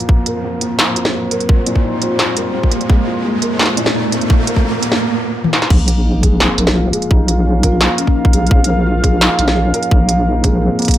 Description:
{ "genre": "half-time drum and bass", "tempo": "171 BPM", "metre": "4/4", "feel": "half-time", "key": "unclear", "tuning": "A4 = 445 Hz", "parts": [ { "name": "dark analog pad", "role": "sustained chords", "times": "0.0-11.0 s", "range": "F3 to C6", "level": "-22 LUFS", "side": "equal", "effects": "chorus, sidechain pumping" }, { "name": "felt-muted upright piano", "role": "arpeggios", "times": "0.0-11.0 s", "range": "Bb2 to Bb4", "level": "-20 LUFS", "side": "equal", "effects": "low-pass filter, tape echo" }, { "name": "industrial drum kit", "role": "drums", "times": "0.0-11.0 s", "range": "crash cymbal, hi-hat, snare drum, toms", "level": "-16 LUFS", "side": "equal", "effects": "none" }, { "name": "riser and sub drop", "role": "sound effects", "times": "0.0-7.1 s", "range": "none", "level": "-21 LUFS", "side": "right 2 dB", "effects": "none" }, { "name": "electronic kick drum", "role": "drums", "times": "0.1-10.9 s", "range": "none", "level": "-12 LUFS", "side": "equal", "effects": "none" }, { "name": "marimba with soft mallets", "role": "melody", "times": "2.0-2.2, 7.6-8.3 s", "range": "Db4 to F4", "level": "-25 LUFS", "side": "left 4 dB", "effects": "dub echo" }, { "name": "deep soft wobble bass", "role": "bass", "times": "5.7-10.7 s", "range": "Bb1", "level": "-15 LUFS", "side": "equal", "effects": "chorus" } ], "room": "light reverb, digital ambience", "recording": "none", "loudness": "-12 LUFS", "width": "side -12 dB against mid", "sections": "0.0-5.7 A section; 5.7-11.0 B section", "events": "build-up 0.0-5.7; riser 0.0-5.0; filter sweep on analog synth pad 0.0-5.7; break 5.0-5.7; drum fill 5.4; drop 5.7-11.0; impact 5.7-7.1", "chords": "0.0 Bb5" }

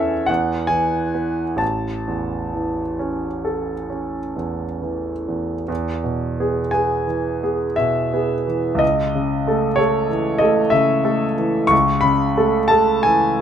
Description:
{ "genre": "classical, romantic nocturne for solo piano", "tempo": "43-64 BPM (dotted quarters)", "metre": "9/8", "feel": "rubato", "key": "A major, E major from 5.7 s", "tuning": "A4 = 440 Hz", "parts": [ { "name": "clear concert grand piano", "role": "solo", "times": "0.0-13.4 s", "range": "A1 to C#6", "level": "-17 LUFS", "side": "equal", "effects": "none" } ], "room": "light reverb", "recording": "minimal, uncompressed stereo recording", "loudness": "-18 LUFS", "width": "side -9 dB against mid", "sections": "0.0-5.7 A section; 5.7-13.4 B section", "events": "none", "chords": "0.3 E; 1.6 A; 5.7 E; 8.8 A/C#" }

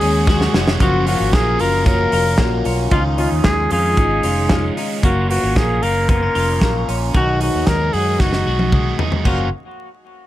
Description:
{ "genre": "jangly indie pop", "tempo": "114 BPM", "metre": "4/4", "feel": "straight", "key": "F# major", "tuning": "A4 = 440 Hz", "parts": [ { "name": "mellow trumpet", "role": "melody", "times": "0.0-9.5 s", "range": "E#4 to A#4", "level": "-20 LUFS", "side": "left 1 dB", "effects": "tape echo" }, { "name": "dark upright piano", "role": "accompaniment", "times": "0.0-5.1 s", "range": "G#3 to G#4", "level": "-25 LUFS", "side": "left 5 dB", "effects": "none" }, { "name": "overdriven electric guitar", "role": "accompaniment", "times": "0.0-9.5 s", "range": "B2 to A#4", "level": "-26 LUFS", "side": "right 8 dB", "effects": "phaser" }, { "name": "twelve-string electric guitar", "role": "arpeggios", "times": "0.0-9.5 s", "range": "D#3 to F#4", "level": "-23 LUFS", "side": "left 2 dB", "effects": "wide subtle chorus" }, { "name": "fingered electric bass", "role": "bass", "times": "0.0-9.5 s", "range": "E#1 to F#2", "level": "-20 LUFS", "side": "equal", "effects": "none" }, { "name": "modern studio drum kit", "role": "drums", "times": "0.0-9.4 s", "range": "crash cymbal, hi-hat, kick drum, snare drum, toms", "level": "-19 LUFS", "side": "equal", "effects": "none" } ], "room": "light reverb", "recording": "vinyl crackle", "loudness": "-14 LUFS", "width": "side -14 dB against mid", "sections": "0.8-9.3 A section; 9.3-10.3 B section", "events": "drum fill 0.3-0.8, 8.2-9.3", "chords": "0.0 C#sus4; 0.8 F#maj7; 2.9 C#add9; 5.0 F#maj7; 7.1 B6; 9.3 F#maj7" }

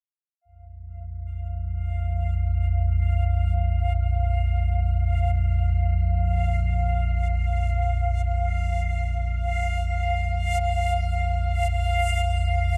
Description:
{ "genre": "dark ambient drone", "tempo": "free time", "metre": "none", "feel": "none", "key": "unclear", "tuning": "A4 = 440 Hz", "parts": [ { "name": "deep rumbling drone", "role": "drone", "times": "0.8-12.8 s", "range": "Bb1 to F2", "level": "-25 LUFS", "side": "equal", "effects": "built-in reverb, subtle chorus" }, { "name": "backwards swelling texture", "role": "texture", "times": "1.4-12.8 s", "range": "F5", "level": "-32 LUFS", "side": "equal", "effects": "built-in reverb, shimmer reverb" } ], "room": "moderate huge ambient reverb, RT60 7.8 s", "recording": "none", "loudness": "-24 LUFS", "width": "mono", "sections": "0.4-12.8 A section", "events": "none", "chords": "0.4 Bb5" }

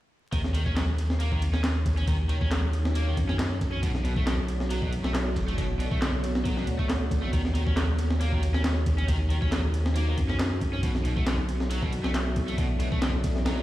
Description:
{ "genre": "breakbeat, breaks", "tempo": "137 BPM", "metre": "4/4", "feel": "swing 54% on 16ths", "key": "unclear", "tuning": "A4 = 440 Hz", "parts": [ { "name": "deep dark ambient pad", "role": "sustained chords", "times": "1.5-13.6 s", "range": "B3 to F#5", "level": "-35 LUFS", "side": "right 1 dB", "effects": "chorus, built-in reverb, vintage 12-bit sampler grit, sidechain pumping" }, { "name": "cranked stack guitar", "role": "riff", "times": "0.3-13.6 s", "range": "B2 to Db4", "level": "-34 LUFS", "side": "equal", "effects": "overdrive, dub echo" }, { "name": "saturated sub bass", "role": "bass", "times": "0.3-13.6 s", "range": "A1 to Gb2", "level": "-27 LUFS", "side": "equal", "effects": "none" }, { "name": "breakbeat sampler-style drum kit", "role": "drums", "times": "0.3-13.6 s", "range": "kick drum, ride cymbal, snare drum", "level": "-28 LUFS", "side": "equal", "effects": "none" }, { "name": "electronic handclaps", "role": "drums", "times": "0.8-13.1 s", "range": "none", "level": "-40 LUFS", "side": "equal", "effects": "none" } ], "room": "little or no reverb", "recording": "played on a big sound system in a bare room, large studio reverb, vinyl crackle", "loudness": "-24 LUFS", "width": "side -15 dB against mid", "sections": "0.3-13.6 A section", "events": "none", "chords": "0.3 Ebm7; 3.8 Bm11; 7.3 Ebm7; 10.8 Bm11" }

